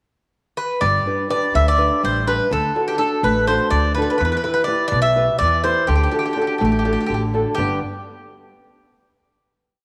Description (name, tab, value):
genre	greek folk, Greek bouzouki band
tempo	248 BPM (eighths)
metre	7/8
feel	straight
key	G major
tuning	A4 = 439 Hz
part	Greek bouzouki	melody	0.6-7.8 s	G4 to E5	-22 LUFS	equal	none
part	nylon-string guitar	accompaniment	0.8-7.8 s	G2 to B4	-24 LUFS	equal	none
part	upright bass	bass	0.8-7.8 s	G1 to E2	-24 LUFS	equal	none
room	wet echo chamber reverb, RT60 2.1 s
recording	none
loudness	-19 LUFS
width	mono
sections	0.0-0.8 pickup bar; 0.8-7.6 A section; 7.6-9.3 final chord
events	none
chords	0.0 N.C.; 0.8 G; 2.5 D; 4.2 Em; 5.9 D; 7.6 G